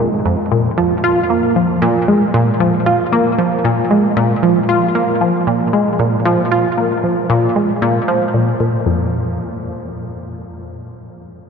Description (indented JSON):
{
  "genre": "ambient",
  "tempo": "115 BPM",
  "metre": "4/4",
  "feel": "straight",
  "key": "unclear",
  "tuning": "A4 = 440 Hz",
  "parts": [
    { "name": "tight sequenced synth", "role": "solo", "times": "0.0-9.1 s", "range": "F2 to F4", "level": "-13 LUFS", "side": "equal", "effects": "chorus, tape echo" }
  ],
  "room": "wet cathedral reverb, RT60 6.8 s",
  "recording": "in a vast, echoing space, nothing above 10.5 kHz",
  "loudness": "-13 LUFS",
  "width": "side -6 dB against mid",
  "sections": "0.0-8.9 A section; 8.9-11.5 B section",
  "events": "none",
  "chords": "none",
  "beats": "| 0.51 1.04 1.56 2.08 | 2.60 3.12 3.65 4.17 | 4.69 5.21 5.73 6.25 | 6.78 7.30 7.82 8.34 | 8.86"
}